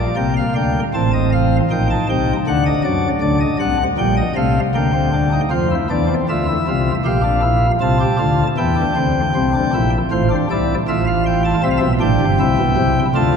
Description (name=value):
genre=classical, baroque-style 3-part fugue for pipe organ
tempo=78 BPM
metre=4/4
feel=straight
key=G minor, F major from 5.5 s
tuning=A4 = 440 Hz
part: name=pipe organ, sparkling flutes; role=solo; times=0.0-13.4 s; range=G1 to A5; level=-14 LUFS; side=equal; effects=none
room=wet cathedral reverb, RT60 5.6 s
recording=minimal, uncompressed stereo recording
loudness=-14 LUFS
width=side -6 dB against mid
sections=0.0-5.5 A section; 5.5-13.4 B section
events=none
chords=0.0 Gm; 0.9 Am7b5; 2.5 D7; 4.0 Gm/Bb; 5.5 F5; 7.0 Gm7/Bb; 8.6 C7; 10.1 F/A; 11.6 C